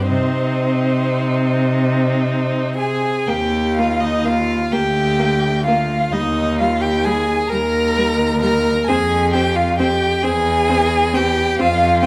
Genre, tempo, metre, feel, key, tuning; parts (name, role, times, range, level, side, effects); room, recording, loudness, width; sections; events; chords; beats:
classical, slow romantic movement for string quartet; 37-45 BPM (dotted quarters); 6/8; rubato; C minor, Eb major from 3.3 s; A4 = 440 Hz
rich violin; melody; 0.0-12.1 s; C5 to Bb5; -25 LUFS; equal
rich violin; second line; 0.0-12.1 s; Eb4 to Bb4; -22 LUFS; equal
clear viola; accompaniment; 0.0-12.1 s; G3 to C4; -26 LUFS; equal
clear cello; bass; 0.0-12.1 s; D2 to C3; -22 LUFS; equal
moderate scoring stage reverb, RT60 1.8 s; -18 LUFS; mono
0.0-3.3 A section; 3.3-12.1 B section
0.1 Cm; 3.3 Eb5; 4.7 Bb/D (rootless); 6.1 Eb; 8.9 F5; 10.2 C/E (rootless)
| 0.10 1.71 | 3.29 4.73 | 6.13 7.51 | 8.88 10.25 | 11.60